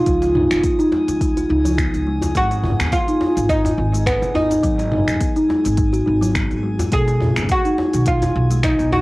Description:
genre	organic downtempo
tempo	105 BPM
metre	4/4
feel	swing 56% on 16ths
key	G# dorian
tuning	A4 = 440 Hz
part	oud	melody	0.0-9.0 s	B3 to G#4	-20 LUFS	right 1 dB	cassette tape, analog delay, plate reverb
part	drifting glass-harmonics texture	texture	0.0-9.0 s	G#4 to G#5	-35 LUFS	equal	chorus, built-in reverb, cassette tape, plate reverb
part	kalimba	arpeggios	0.1-9.0 s	D#3 to F#4	-20 LUFS	equal	cassette tape, analog delay, plate reverb
part	upright bass	bass	0.1-9.0 s	F#1 to D#2	-21 LUFS	equal	tube saturation, sidechain pumping
part	electronic kick drum	drums	0.1-8.8 s	none	-22 LUFS	equal	cassette tape
part	organic electronic drum kit	drums	0.1-8.9 s	finger snaps, hi-hat, shaker, toms	-26 LUFS	equal	overdrive, cassette tape
part	djembe	percussion	0.2-9.0 s	none	-27 LUFS	left 1 dB	none
room	moderate studio reverb, RT60 0.6 s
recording	home recording on cassette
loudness	-15 LUFS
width	side -21 dB against mid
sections	0.0-9.0 A section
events	none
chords	0.1 C#; 2.4 G#m; 6.9 B

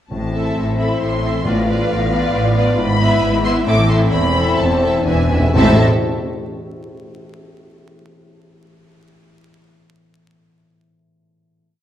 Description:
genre	classical, dramatic, fast romantic movement for symphony orchestra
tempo	119-138 BPM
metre	3/4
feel	rubato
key	A minor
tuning	A4 = 441 Hz
part	dark symphonic violin section	melody	0.1-5.8 s	F5 to D6	-24 LUFS	left 2 dB	none
part	mellow French horn section	sustained chords	0.1-5.8 s	A3 to E4	-22 LUFS	left 2 dB	none
part	concert harp	arpeggios	0.1-7.0 s	E2 to E6	-23 LUFS	left 3 dB	none
part	rich symphonic double bass section	bass	0.1-5.8 s	E1 to A1	-22 LUFS	right 2 dB	none
part	warm symphonic cello section	bass	0.1-5.8 s	E2 to A2	-20 LUFS	right 1 dB	none
part	timpani	percussion	0.1-2.1, 5.1-5.8 s	E2 to A2	-22 LUFS	equal	none
part	warm symphonic violin section	second line	0.3-5.8 s	A4 to E5	-23 LUFS	equal	none
part	warm symphonic viola section	accompaniment	0.3-5.8 s	B3 to F4	-24 LUFS	right 1 dB	none
room	moderate scoring stage reverb, RT60 1.5 s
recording	vinyl crackle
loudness	-14 LUFS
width	side -11 dB against mid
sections	0.1-5.5 A section; 5.5-7.0 final chord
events	slowing down 2.1-5.5; timpani fill 5.1-5.5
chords	0.1 Am; 1.5 Bm7b5/A; 2.8 E/G#; 3.7 Am; 4.1 Am/E; 5.1 E7; 5.5 Am

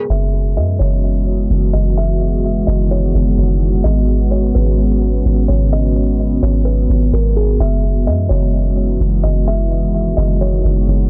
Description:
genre	hip hop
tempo	128 BPM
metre	4/4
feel	half-time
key	unclear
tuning	A4 = 440 Hz
part	kalimba	melody	0.0-11.1 s	G#4 to E5	-27 LUFS	equal	low-pass filter, digital delay
part	dark analog pad	sustained chords	0.0-11.1 s	C#3 to F#4	-22 LUFS	equal	chorus
part	soft 808-style bass	bass	0.1-11.1 s	F#1 to F#2	-17 LUFS	equal	none
room	little or no reverb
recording	dense, heavily limited modern master, low-pass filter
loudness	-15 LUFS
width	mono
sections	0.1-11.1 A section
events	filter sweep 0.1-11.1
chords	0.1 F#9sus4; 3.8 G#m7; 7.6 F#9sus4

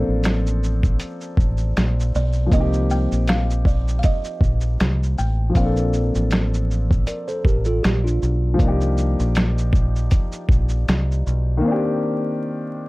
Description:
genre	lo-fi hip hop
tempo	79 BPM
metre	4/4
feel	swing 55% on 16ths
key	C dorian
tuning	A4 = 440 Hz
part	dark upright piano	accompaniment	0.0-12.9 s	Eb3 to A4	-25 LUFS	left 1 dB	low-pass filter
part	deep dub fingered electric bass	bass	0.0-11.6 s	A1 to C2	-20 LUFS	equal	none
part	lo-fi sampler-style drum kit	drums	0.2-11.5 s	finger snaps, hi-hat, kick drum, shaker, snare drum	-20 LUFS	equal	overdrive
part	buzzing kalimba	melody	2.2-7.0 s	D5 to G5	-29 LUFS	right 2 dB	low-pass filter, analog delay, plate reverb
part	mellow tine electric piano	second line	7.1-8.6 s	D4 to D5	-26 LUFS	right 2 dB	medium stereo tremolo, low-pass filter, analog delay
room	light reverb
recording	dark, warm production, vinyl crackle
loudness	-18 LUFS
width	side -21 dB against mid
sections	0.0-12.9 A section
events	break 11.6-12.9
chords	0.0 Bbmaj7; 2.5 Cm7; 5.6 Bbmaj7; 8.6 Cm11; 11.6 Cm7

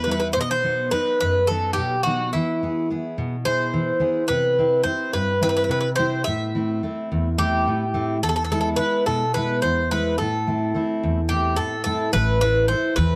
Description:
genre	greek folk, Greek bouzouki band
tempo	214 BPM (eighths)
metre	7/8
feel	straight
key	A dorian sharp4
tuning	A4 = 437 Hz
part	Greek bouzouki	melody	0.0-13.2 s	E4 to E5	-24 LUFS	equal	none
part	picked steel-string acoustic guitar	accompaniment	0.0-13.2 s	E2 to C5	-26 LUFS	equal	none
part	upright bass	bass	12.1-13.2 s	A1 to E2	-23 LUFS	equal	none
room	little or no reverb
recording	close, detailed microphones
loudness	-22 LUFS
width	mono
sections	0.0-12.1 A section; 12.1-13.2 A section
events	none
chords	0.4 B; 2.3 E; 4.3 C; 6.3 Am; 8.2 E; 10.2 Am

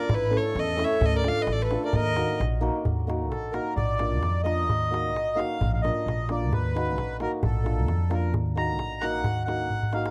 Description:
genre	balkan folk, Balkan wedding band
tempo	131 BPM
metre	2/4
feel	swing 54% on 16ths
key	Eb hungarian minor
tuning	A4 = 440 Hz
part	rich fiddle	melody	0.0-2.4 s	Cb5 to F5	-31 LUFS	equal	none
part	accordion	second line	0.0-10.1 s	E4 to Bb5	-33 LUFS	equal	none
part	upright bass	bass	0.1-10.1 s	A1 to F2	-31 LUFS	equal	none
part	darbuka	percussion	0.1-10.1 s	none	-32 LUFS	equal	none
part	hammered dulcimer	accompaniment	0.3-10.1 s	A3 to Bb4	-33 LUFS	equal	none
room	small room ambience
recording	dry, close 1970s-style studio recording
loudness	-26 LUFS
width	mono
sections	0.0-2.8 A section; 2.8-10.1 B section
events	accordion solo 2.8-10.1; drum fill 9.7-10.1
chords	0.1 A; 1.0 Dm; 1.9 Ebm; 3.8 Bb; 4.7 Ebm; 5.6 Bb; 6.5 Ebm; 7.4 Bb; 8.3 Ebm

